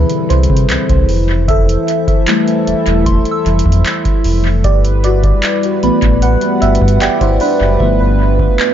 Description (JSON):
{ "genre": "contemporary R&B", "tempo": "76 BPM", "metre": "4/4", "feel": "straight", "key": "G major", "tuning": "A4 = 441 Hz", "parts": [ { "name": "FM electric piano with soft pad layer", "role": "accompaniment", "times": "0.0-8.7 s", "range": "B2 to F#5", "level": "-15 LUFS", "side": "equal", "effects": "chorus, phaser, analog delay" }, { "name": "chorused pulse-width pad", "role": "sustained chords", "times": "0.0-8.7 s", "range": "E3 to B4", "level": "-19 LUFS", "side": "left 1 dB", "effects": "sidechain pumping" }, { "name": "sub bass with octave", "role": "bass", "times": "0.0-8.5 s", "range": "E1 to C3", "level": "-13 LUFS", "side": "equal", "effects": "none" }, { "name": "soft synth bell", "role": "texture", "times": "0.0-8.7 s", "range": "E5 to E6", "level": "-26 LUFS", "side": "right 2 dB", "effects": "chorus, analog delay" }, { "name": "booming analog drum machine", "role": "drums", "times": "0.1-8.7 s", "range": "handclaps, hi-hat, kick drum", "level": "-16 LUFS", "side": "equal", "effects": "analog delay" } ], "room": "light reverb", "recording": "echo-heavy mix, nothing above 7.5 kHz", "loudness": "-10 LUFS", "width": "side -10 dB against mid", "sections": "0.0-8.7 A section", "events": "FM electric piano solo 0.0-8.7; hi-hats muted 7.8-8.7", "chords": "0.0 Cmaj7; 1.1 Fmaj7; 4.6 G6; 7.8 G7" }